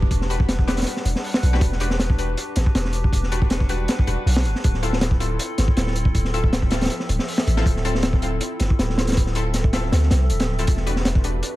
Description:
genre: drum and bass, jungle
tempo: 159 BPM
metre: 4/4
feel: swing 54% on 16ths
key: E phrygian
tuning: A4 = 440 Hz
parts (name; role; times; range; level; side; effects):
- warbly tape-like pad; sustained chords; 0.0-11.6 s; F3 to F#5; -30 LUFS; equal; chorus, built-in reverb
- long sustained 808-style bass; bass; 0.0-11.4 s; D1 to D2; -22 LUFS; equal; none
- crunchy breakbeat drum kit; drums; 0.0-11.5 s; hi-hat, kick drum, snare drum; -21 LUFS; equal; none
- downlifter; sound effects; 0.0-1.6 s; none; -47 LUFS; right 1 dB; none
- orchestra-hit-like synth stab; stabs; 0.3-11.3 s; C4 to B4; -30 LUFS; left 2 dB; built-in reverb, dub echo
room: small room ambience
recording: vinyl crackle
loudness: -18 LUFS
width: side -17 dB against mid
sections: 0.0-11.6 A section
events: kick drops out 9.9-10.7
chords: 0.0 Em9; 4.6 Dm9; 10.7 Em9

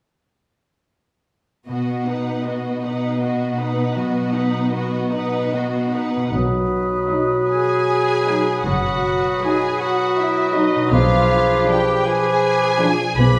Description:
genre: classical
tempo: 52 BPM (dotted quarters)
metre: 12/8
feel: rubato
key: B major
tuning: A4 = 439 Hz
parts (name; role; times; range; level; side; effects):
- warm symphonic violin section; melody; 1.7-13.4 s; D#5 to B5; -29 LUFS; equal; none
- warm symphonic violin section; second line; 1.7-13.4 s; D#4 to B4; -28 LUFS; equal; none
- warm symphonic viola section; accompaniment; 1.7-13.1 s; F3 to D#4; -31 LUFS; equal; none
- concert harp; arpeggios; 1.7-13.4 s; B2 to F#5; -31 LUFS; equal; none
- rich symphonic cello section; bass; 1.7-13.4 s; F#2 to B2; -26 LUFS; equal; none
- mellow hollow concert flute; second line; 6.3-13.4 s; D6 to D#6; -27 LUFS; equal; none
- warm clarinet; second line; 6.3-13.4 s; F#4 to G#4; -27 LUFS; equal; none
- mellow bassoon; accompaniment; 6.3-13.4 s; F3 to F#3; -25 LUFS; equal; none
- rich symphonic double bass section; bass; 6.3-13.4 s; F#1 to B1; -26 LUFS; equal; none
- timpani; percussion; 6.3-12.0 s; B2; -27 LUFS; equal; none
- warm oboe; second line; 6.4-13.4 s; B4; -29 LUFS; equal; none
- warm French horn section; sustained chords; 7.1-12.9 s; F3 to D#4; -27 LUFS; equal; none
room: wet recital hall reverb, RT60 1.3 s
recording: recorded in a church or concert hall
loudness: -19 LUFS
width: mono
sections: 1.7-6.3 A section; 6.3-13.4 B section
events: none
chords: 1.7 B; 10.9 Bdim7

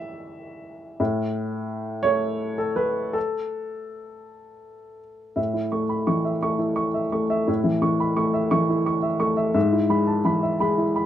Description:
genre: neoclassical minimalist piano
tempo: 54-58 BPM (dotted quarters)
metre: 6/8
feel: rubato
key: A major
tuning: A4 = 440 Hz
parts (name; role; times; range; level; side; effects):
- warm upright piano; solo; 0.0-11.1 s; G#2 to C#6; -22 LUFS; equal; none
room: moderate studio reverb, RT60 0.6 s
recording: dry, close 1970s-style studio recording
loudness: -21 LUFS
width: side -11 dB against mid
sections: 0.0-5.4 A section; 5.4-11.1 B section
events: none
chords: 0.0 N.C.; 5.4 A; 9.6 E/G#

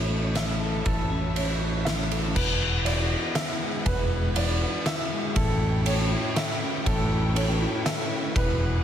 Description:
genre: post-rock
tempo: 120 BPM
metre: 3/4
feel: straight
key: unclear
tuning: A4 = 439 Hz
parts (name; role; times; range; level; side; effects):
- bright studio string section; sustained chords; 0.0-8.8 s; E3 to G5; -36 LUFS; left 2 dB; none
- felt-muted upright piano; arpeggios; 0.0-8.8 s; A4 to E5; -32 LUFS; right 2 dB; slapback echo
- twelve-string electric guitar; arpeggios; 0.0-8.8 s; E2 to A4; -32 LUFS; left 2 dB; slapback echo
- growling fingered electric bass; bass; 0.0-8.8 s; E1 to A1; -27 LUFS; equal; overdrive
- oversized low-tuned drum kit; drums; 0.4-8.5 s; crash cymbal, kick drum, ride cymbal, snare drum; -27 LUFS; equal; none
room: moderate concert hall reverb, RT60 2.4 s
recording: big arena sound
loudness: -23 LUFS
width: side -10 dB against mid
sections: 0.0-2.4 A section; 2.4-8.8 B section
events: none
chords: 0.0 Aadd9; 2.4 Eadd9; 5.4 A7

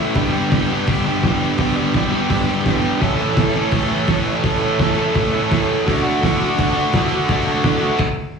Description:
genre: garage rock duo or trio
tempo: 168 BPM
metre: 4/4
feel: straight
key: A mixolydian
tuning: A4 = 440 Hz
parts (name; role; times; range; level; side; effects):
- overdriven electric guitar; riff; 0.0-8.0 s; G2 to A4; -17 LUFS; equal; slapback echo
- cloth-damped thuddy drum kit; drums; 0.1-8.1 s; crash cymbal, hi-hat, kick drum, snare drum; -21 LUFS; equal; none
- overdriven combo organ; sustained chords; 3.0-8.0 s; E4 to D5; -26 LUFS; right 3 dB; none
room: light reverb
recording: live gig heard through the venue's PA, club reverb, studio ambience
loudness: -15 LUFS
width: side -5 dB against mid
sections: 0.0-8.4 A section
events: stop 8.0-8.4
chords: 0.2 G; 3.0 A; 5.9 D

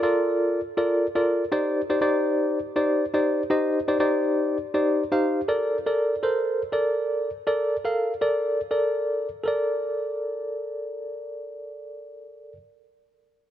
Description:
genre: pop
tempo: 121 BPM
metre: 4/4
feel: straight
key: Bb major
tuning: A4 = 437 Hz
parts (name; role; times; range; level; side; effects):
- tine electric piano; solo; 0.0-12.6 s; Eb4 to F5; -22 LUFS; equal; medium tremolo
room: light reverb, digital ambience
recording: none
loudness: -22 LUFS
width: side -11 dB against mid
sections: 0.0-5.5 A section; 5.5-9.5 B section; 9.5-13.4 C section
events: drop 0.0-5.5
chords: 0.0 Bbmaj7; 1.5 Cmadd9; 5.5 Bbmaj7

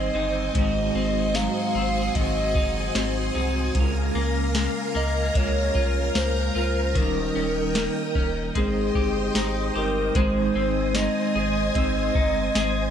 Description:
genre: dream pop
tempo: 75 BPM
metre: 4/4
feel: straight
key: Ab major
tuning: A4 = 440 Hz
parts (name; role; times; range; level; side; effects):
- warbly nostalgic lead; melody; 0.0-12.9 s; Ab4 to F5; -28 LUFS; equal; chorus, tape echo
- electric guitar through a small old amp; accompaniment; 0.0-12.9 s; Ab2 to C5; -30 LUFS; right 5 dB; tremolo, wide subtle chorus
- string machine, violins; sustained chords; 0.0-12.9 s; Gb4 to Eb6; -30 LUFS; equal; ensemble chorus
- clean electric guitar; arpeggios; 0.0-12.9 s; Ab2 to Ab4; -28 LUFS; left 2 dB; analog chorus, tape echo
- warm sub bass; bass; 0.0-12.9 s; Eb1 to Db2; -28 LUFS; equal; none
- soft vintage rhythm box; drums; 0.6-12.7 s; hi-hat, kick drum, snare drum, tambourine; -25 LUFS; equal; none
room: light reverb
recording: none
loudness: -21 LUFS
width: side -8 dB against mid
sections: 0.0-10.2 A section; 10.2-12.9 B section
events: none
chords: 0.0 Abmaj7; 0.6 Ab7; 3.8 Db6; 7.0 Eb7; 8.6 Abmaj7

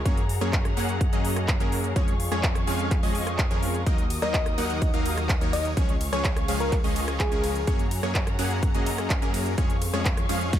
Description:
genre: EDM, festival progressive house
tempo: 126 BPM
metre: 4/4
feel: straight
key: Db major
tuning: A4 = 441 Hz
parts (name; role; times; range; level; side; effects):
- dark studio string section; sustained chords; 0.0-10.6 s; Gb4 to Eb6; -35 LUFS; left 2 dB; sidechain pumping
- supersaw stab; riff; 0.0-10.6 s; F3 to Gb5; -29 LUFS; equal; vintage 12-bit sampler grit, sidechain pumping, dub echo
- wide detuned saw bass; bass; 0.0-10.6 s; Db2 to Gb2; -30 LUFS; equal; chorus, sidechain pumping
- big-room dance drum kit; drums; 0.1-10.6 s; handclaps, hi-hat, ride cymbal, rim click, snare drum; -32 LUFS; right 1 dB; overdrive
- electronic kick drum; drums; 0.1-10.6 s; none; -25 LUFS; equal; overdrive
- soft struck synth lead; melody; 4.2-7.7 s; Ab4 to Eb5; -32 LUFS; left 2 dB; chorus, dub echo
room: little or no reverb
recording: none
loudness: -22 LUFS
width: side -11 dB against mid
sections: 0.0-10.6 A section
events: none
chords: 0.1 Gbadd9; 2.0 Db/F; 3.9 Ebm; 5.8 Db; 7.7 Gbadd9; 9.6 Db/F

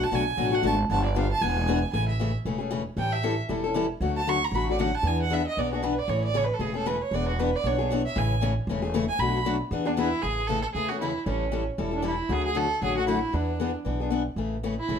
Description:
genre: acoustic string swing (jazz manouche)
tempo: 231 BPM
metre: 4/4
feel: swing 56% on 8ths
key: A major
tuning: A4 = 440 Hz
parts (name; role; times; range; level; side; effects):
- warm violin; melody; 0.0-15.0 s; C#4 to C#6; -28 LUFS; right 3 dB; plate reverb
- picked steel-string acoustic guitar; accompaniment; 0.0-15.0 s; B2 to A4; -28 LUFS; left 5 dB; none
- upright bass; bass; 0.0-15.0 s; E1 to E2; -29 LUFS; right 1 dB; none
room: moderate studio reverb, RT60 0.8 s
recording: none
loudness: -24 LUFS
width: side -7 dB against mid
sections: 0.0-1.9 A section; 1.9-10.2 A section; 10.2-15.0 B section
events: violin solo 0.0-1.9, 1.9-10.2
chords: 0.0 Bm7; 0.9 G7; 1.4 E7; 1.9 Amaj7; 3.0 A7; 4.0 Dmaj7; 5.1 E7; 6.1 Amaj7; 7.1 E7; 8.2 Amaj7; 9.2 Bm7; 9.7 E7; 10.2 Amaj7; 11.3 A7; 12.3 Dmaj7; 13.3 E7; 14.4 Amaj7

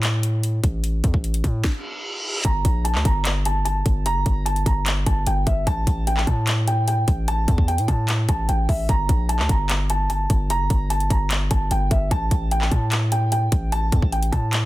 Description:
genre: hip hop, trap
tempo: 149 BPM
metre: 4/4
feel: half-time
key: unclear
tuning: A4 = 440 Hz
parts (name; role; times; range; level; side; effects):
- distorted 808-style bass; bass; 0.0-14.7 s; F1 to A2; -22 LUFS; equal; distortion
- trap drum kit; drums; 0.0-14.6 s; handclaps, hi-hat, kick drum, snare drum; -22 LUFS; equal; none
- reverse cymbal; sound effects; 1.8-2.4 s; none; -26 LUFS; right 1 dB; none
- dark concert grand piano; melody; 2.4-14.7 s; E5 to Bb5; -26 LUFS; right 1 dB; none
room: digital ambience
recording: dense, heavily limited modern master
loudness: -19 LUFS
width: side -17 dB against mid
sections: 0.0-2.4 A section; 2.4-14.7 B section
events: break 0.0-2.4; stop 1.6-2.4; reverse cymbal 1.8-2.4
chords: 0.0 A5; 2.4 Gmadd9; 5.7 A5; 8.9 Gmadd9; 12.1 A5

